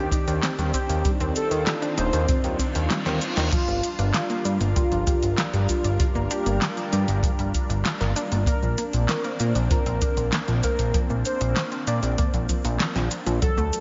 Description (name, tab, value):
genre	synthwave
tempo	97 BPM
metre	4/4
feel	straight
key	unclear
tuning	A4 = 440 Hz
part	warm velvety synth lead	melody	0.0-13.8 s	F4 to D5	-32 LUFS	equal	chorus, digital delay, slapback echo
part	lush unison pad	sustained chords	0.0-13.8 s	D3 to Bb4	-34 LUFS	equal	chorus, phaser, sidechain pumping
part	unison pluck	arpeggios	0.0-13.6 s	F3 to G4	-35 LUFS	equal	delay, slapback echo
part	fat analog bass	bass	0.0-13.7 s	Eb1 to Bb2	-26 LUFS	equal	sidechain pumping
part	kick drum	drums	0.1-13.5 s	none	-27 LUFS	equal	none
part	pop drum kit	drums	0.1-13.8 s	cabasa, crash cymbal, handclaps, hi-hat, snare drum, toms	-31 LUFS	equal	slapback echo
part	reverse cymbal	sound effects	2.5-3.5 s	none	-37 LUFS	equal	slapback echo
room	moderate lush hall reverb, RT60 2.4 s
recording	big arena sound, nothing above 7.5 kHz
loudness	-24 LUFS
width	mono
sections	0.0-13.8 A section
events	reverse cymbal 2.5-3.5; kick drops out 2.9-3.5; drum fill 2.9-3.5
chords	0.0 Cmadd9/Eb; 3.5 Gm7; 8.5 Bbadd9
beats	0.43 | 1.05 1.67 2.29 2.90 | 3.52 4.14 4.76 5.38 | 6.00 6.62 7.24 7.85 | 8.47 9.09 9.71 10.33 | 10.95 11.56 12.18 12.80 | 13.42